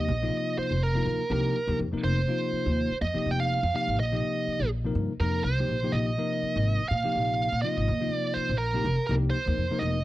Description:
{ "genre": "electric jazz fusion", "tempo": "123 BPM", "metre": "4/4", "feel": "swing 55% on 16ths", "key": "unclear", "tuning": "A4 = 440 Hz", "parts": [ { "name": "bluesy overdriven lead guitar", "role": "melody", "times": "0.0-10.0 s", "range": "Bb4 to G5", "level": "-29 LUFS", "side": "right 3 dB", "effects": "distortion" }, { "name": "bell-like tine electric piano", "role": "accompaniment", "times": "0.0-10.0 s", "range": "C3 to Bb4", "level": "-31 LUFS", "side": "left 3 dB", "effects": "none" }, { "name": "upright bass", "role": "bass", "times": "0.0-10.0 s", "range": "F1 to Bb2", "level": "-28 LUFS", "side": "equal", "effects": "none" } ], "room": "little or no reverb", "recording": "dry, close 1970s-style studio recording", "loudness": "-25 LUFS", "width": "side -16 dB against mid", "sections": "0.0-10.0 A section", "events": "none", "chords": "0.0 F9sus4; 4.0 Bbsus4; 8.8 F9sus4", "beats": "| 0.08 0.57 1.06 1.55 | 2.04 2.52 3.01 3.50 | 3.99 4.47 4.96 5.45 | 5.93 6.42 6.91 7.39 | 7.88 8.36 8.85 9.33 | 9.81" }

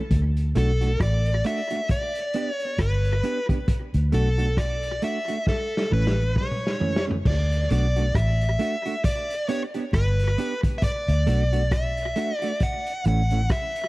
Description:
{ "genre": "roots reggae", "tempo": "67 BPM", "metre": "4/4", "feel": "swing 58% on 16ths", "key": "D major", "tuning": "A4 = 440 Hz", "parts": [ { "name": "vintage muted fingered electric bass", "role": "bass", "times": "0.1-13.5 s", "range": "G1 to D2", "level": "-22 LUFS", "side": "equal", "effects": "none" }, { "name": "vintage drum kit", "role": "drums", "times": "0.1-13.9 s", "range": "crash cymbal, hi-hat, kick drum, rim click, snare drum, toms", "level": "-26 LUFS", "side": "equal", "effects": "tape echo" }, { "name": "dark smooth lead guitar", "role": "melody", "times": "0.6-13.9 s", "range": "A4 to F#5", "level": "-28 LUFS", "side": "equal", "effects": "overdrive, tape echo" }, { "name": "mellow electric guitar", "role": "accompaniment", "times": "0.6-13.4 s", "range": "E3 to G4", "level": "-30 LUFS", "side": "right 3 dB", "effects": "tape echo" } ], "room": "small room ambience", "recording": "echo-heavy mix, vinyl crackle", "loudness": "-21 LUFS", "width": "side -20 dB against mid", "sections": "0.0-7.3 A section; 7.3-13.9 B section", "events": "drum fill 5.5-7.3", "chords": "0.1 D; 1.9 G; 3.7 D; 5.5 A; 7.3 D; 9.0 G; 10.8 D; 12.6 A", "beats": "| 0.11 1.00 1.90 2.79 | 3.68 4.58 5.47 6.36 | 7.25 8.15 9.04 9.93 | 10.82 11.72 12.61 13.50" }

